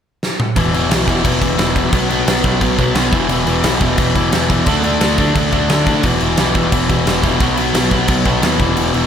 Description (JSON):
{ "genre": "punk rock", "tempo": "175 BPM", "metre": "4/4", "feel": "straight", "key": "unclear", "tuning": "A4 = 442 Hz", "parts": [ { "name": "big rock drum kit", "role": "drums", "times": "0.2-9.0 s", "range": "crash cymbal, kick drum, snare drum, toms", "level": "-17 LUFS", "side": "equal", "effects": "none" }, { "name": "overdriven semi-hollow guitar", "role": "riff", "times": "0.6-9.1 s", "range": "E2 to D4", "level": "-18 LUFS", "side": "left 8 dB", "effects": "none" }, { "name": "sludgy distorted guitar", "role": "riff", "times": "0.6-9.1 s", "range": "E2 to D4", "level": "-19 LUFS", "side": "right 10 dB", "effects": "overdrive" }, { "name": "growling picked electric bass", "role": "bass", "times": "0.6-9.1 s", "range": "E1 to D3", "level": "-20 LUFS", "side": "equal", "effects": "overdrive" } ], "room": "little or no reverb", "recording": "none", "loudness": "-12 LUFS", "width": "side -8 dB against mid", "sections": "0.6-9.1 A section", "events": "drum fill 0.2-0.6", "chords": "0.0 N.C.; 0.6 E5; 1.9 B5; 3.1 E5; 4.7 D5; 6.0 E5; 7.4 B" }